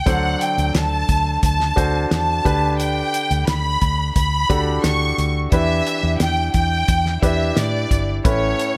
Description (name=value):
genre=piano-driven pop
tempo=88 BPM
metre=4/4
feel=straight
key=unclear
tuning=A4 = 439 Hz
part: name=rich studio violin section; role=melody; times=0.0-8.8 s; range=C#5 to C#6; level=-24 LUFS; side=equal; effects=plate reverb
part: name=clear baby grand piano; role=accompaniment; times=0.1-8.8 s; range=A2 to C5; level=-26 LUFS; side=equal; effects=plate reverb
part: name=vintage muted fingered electric bass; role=bass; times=0.1-8.5 s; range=G1 to A2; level=-24 LUFS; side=equal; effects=none
part: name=damped 70s drum kit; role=drums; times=0.1-8.8 s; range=hi-hat, kick drum, snare drum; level=-23 LUFS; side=equal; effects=none
room=light reverb, small room ambience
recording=none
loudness=-19 LUFS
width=mono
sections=0.0-8.8 A section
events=none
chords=0.1 D7; 2.5 Gmaj7/D; 5.5 Em7; 8.2 Aadd9